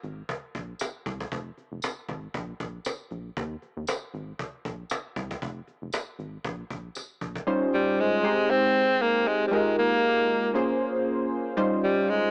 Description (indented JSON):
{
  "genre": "early-eighties boogie funk",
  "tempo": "117 BPM",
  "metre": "4/4",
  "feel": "swing 56% on 16ths",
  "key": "unclear",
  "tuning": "A4 = 442 Hz",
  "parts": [
    { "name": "rubbery square bass", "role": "bass", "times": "0.0-7.4 s", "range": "F1 to Eb2", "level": "-40 LUFS", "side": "equal", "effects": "none" },
    { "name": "cajon", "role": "drums", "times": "0.0-7.5 s", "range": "none", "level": "-36 LUFS", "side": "equal", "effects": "cassette tape" },
    { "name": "tambourine", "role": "percussion", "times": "0.8-7.1 s", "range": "none", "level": "-43 LUFS", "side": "equal", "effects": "none" },
    { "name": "funky polysynth comp", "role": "accompaniment", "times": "7.5-12.3 s", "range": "G3 to C5", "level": "-28 LUFS", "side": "equal", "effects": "chorus" },
    { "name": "bright alto saxophone", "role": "melody", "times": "7.7-12.3 s", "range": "G3 to C4", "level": "-26 LUFS", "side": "equal", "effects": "cassette tape" }
  ],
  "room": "light reverb",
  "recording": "home recording on cassette, small speaker sound",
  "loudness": "-27 LUFS",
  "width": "mono",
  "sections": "0.0-7.5 A section; 7.5-12.3 B section",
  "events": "drum fill 7.0-7.5",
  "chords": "0.0 Ab; 1.3 Fm; 2.3 N.C.; 4.1 Ab; 5.4 Fm; 6.4 N.C.; 7.5 Eb13; 8.2 Abmaj7; 9.5 Fm11; 10.5 Bbm9; 11.6 Eb13"
}